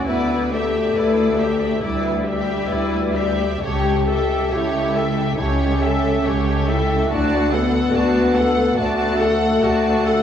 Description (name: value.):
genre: classical, slow romantic movement for symphony orchestra.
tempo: 69 BPM.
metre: 4/4.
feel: rubato.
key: D major.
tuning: A4 = 440 Hz.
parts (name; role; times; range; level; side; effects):
clear studio violin section; melody; 0.0-10.2 s; C#5 to A5; -28 LUFS; left 2 dB; none.
rich studio violin section; second line; 0.0-10.2 s; G4 to F#5; -29 LUFS; left 3 dB; none.
rich studio viola section; accompaniment; 0.0-10.2 s; E4 to A4; -24 LUFS; equal; none.
warm French horn section; sustained chords; 0.0-10.2 s; G3 to G4; -20 LUFS; left 3 dB; none.
clear chamber double bass section; bass; 0.1-10.2 s; C#2 to D2; -26 LUFS; right 1 dB; none.
clear studio cello section; bass; 0.1-10.2 s; C#2 to D2; -24 LUFS; right 2 dB; none.
room: wet scoring stage reverb, RT60 1.6 s.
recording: worn, warbling old tape, cassette tape, warbly pitch drift, small room ambience.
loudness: -17 LUFS.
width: side -9 dB against mid.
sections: 0.0-10.2 A section.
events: none.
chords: 0.1 Em7/D; 3.6 A7/C#; 7.1 D.